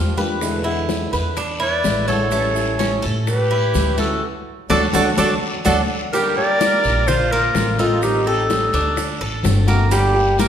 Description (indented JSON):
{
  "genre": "latin, Cuban son and guajira",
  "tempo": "126 BPM",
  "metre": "4/4",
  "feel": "straight",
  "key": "unclear",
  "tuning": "A4 = 439 Hz",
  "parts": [
    { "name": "flamenco guitar", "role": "accompaniment", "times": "0.0-10.5 s", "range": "B2 to G4", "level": "-25 LUFS", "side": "left 2 dB", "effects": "none" },
    { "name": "Cuban tres", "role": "arpeggios", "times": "0.0-10.5 s", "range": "G3 to B4", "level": "-23 LUFS", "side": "right 3 dB", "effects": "none" },
    { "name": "upright bass", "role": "bass", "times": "0.0-10.5 s", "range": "G1 to A2", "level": "-22 LUFS", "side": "equal", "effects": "none" },
    { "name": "bongos", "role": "percussion", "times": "0.2-10.5 s", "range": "none", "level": "-28 LUFS", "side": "left 4 dB", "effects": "none" },
    { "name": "congas", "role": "percussion", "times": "0.2-10.5 s", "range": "none", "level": "-27 LUFS", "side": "left 2 dB", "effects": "none" },
    { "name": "guiro", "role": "percussion", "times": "0.2-10.5 s", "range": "none", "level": "-32 LUFS", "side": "left 3 dB", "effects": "none" },
    { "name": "maracas", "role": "percussion", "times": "0.2-10.5 s", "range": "none", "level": "-34 LUFS", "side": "right 5 dB", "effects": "none" },
    { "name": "mellow clarinet", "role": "melody", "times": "1.6-9.2 s", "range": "G4 to D5", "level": "-20 LUFS", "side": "equal", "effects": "none" },
    { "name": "bright trumpet", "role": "second line", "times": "1.6-9.0 s", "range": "Eb4 to B4", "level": "-27 LUFS", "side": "right 3 dB", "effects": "none" }
  ],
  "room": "wet recital hall reverb, RT60 1.4 s",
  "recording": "recorded in a church or concert hall",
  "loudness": "-16 LUFS",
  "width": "side -9 dB against mid",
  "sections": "0.0-6.1 A section; 6.1-10.5 B section",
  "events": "band accent 4.2-6.1; drum fill 5.4-6.1",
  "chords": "0.4 E7; 2.3 A7; 4.2 D; 6.1 Gm; 7.1 Bbadd9; 8.0 Am7b5; 9.0 D7; 9.9 Gm",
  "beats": "| 0.42 0.89 1.37 1.84 | 2.32 2.80 3.27 3.75 | 4.23 4.70 5.18 5.65 | 6.13 6.60 7.08 7.55 | 8.02 8.50 8.97 9.44 | 9.92 10.39"
}